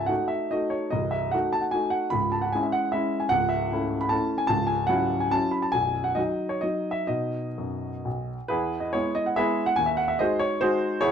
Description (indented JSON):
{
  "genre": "classical, romantic triple-time dance for piano with dotted rhythms",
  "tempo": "119-160 BPM",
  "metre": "3/4",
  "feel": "rubato",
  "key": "C# minor, E major from 3.3 s",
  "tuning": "A4 = 440 Hz",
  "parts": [
    { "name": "warm baby grand piano", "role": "solo", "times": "0.0-11.1 s", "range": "B0 to B5", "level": "-23 LUFS", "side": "equal", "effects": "none" }
  ],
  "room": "light reverb",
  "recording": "dark, warm production",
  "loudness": "-23 LUFS",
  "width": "side -8 dB against mid",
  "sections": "0.0-8.5 A section; 8.5-11.1 B section",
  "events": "none",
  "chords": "0.0 D#m7b5/C#; 0.9 Cdim7; 2.1 C#m; 5.7 B; 8.5 E; 9.8 G#7/D#",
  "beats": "0.10 0.53 | 0.94 1.33 1.74 | 2.12 2.53 2.93 | 3.31 3.72 4.13 | 4.51 4.91 5.33 | 5.75 6.18 6.64 | 7.09 7.58 8.06 | 8.51 8.94 9.38 | 9.78 10.20 10.62 | 11.03"
}